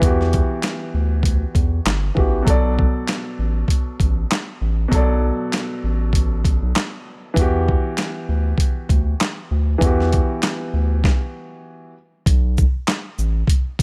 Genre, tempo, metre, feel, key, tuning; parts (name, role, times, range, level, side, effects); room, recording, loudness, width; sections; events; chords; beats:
hip hop, boom-bap hip-hop; 98 BPM; 4/4; swing 57% on 16ths; A4 = 442 Hz
warm upright piano; accompaniment; 0.0-11.9 s; B2 to D5; -27 LUFS; equal; cassette tape, high-pass filter, low-pass filter
round analog bass; bass; 0.0-13.8 s; G1 to E2; -22 LUFS; equal
boom bap sampler-style drum kit; drums; 0.0-13.8 s; handclaps, hi-hat, kick drum, shaker, snare drum; -21 LUFS; equal
little or no reverb; -20 LUFS; mono
0.0-12.3 A section; 12.3-13.8 B section
stop 11.0-12.3
0.0 Emadd9; 2.5 Bm7; 7.4 Emadd9; 12.3 Asus2
| 0.02 0.63 1.24 1.85 | 2.47 3.08 3.69 4.30 | 4.92 5.53 6.14 6.75 | 7.37 7.98 8.59 9.20 | 9.81 10.43 11.04 11.65 | 12.26 12.88 13.49